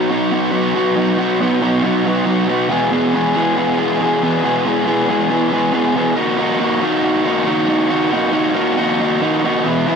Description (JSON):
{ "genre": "rock", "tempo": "138 BPM", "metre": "4/4", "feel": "straight", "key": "unclear", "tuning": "A4 = 440 Hz", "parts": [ { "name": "raw garage guitar", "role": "solo", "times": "0.0-10.0 s", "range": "E2 to G#4", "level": "-14 LUFS", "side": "equal", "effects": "overdrive" } ], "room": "digital ambience", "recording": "dry, close 1970s-style studio recording", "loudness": "-14 LUFS", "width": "side -6 dB against mid", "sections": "0.0-9.6 A section", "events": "none", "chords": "0.0 B; 2.7 E; 6.2 D#m" }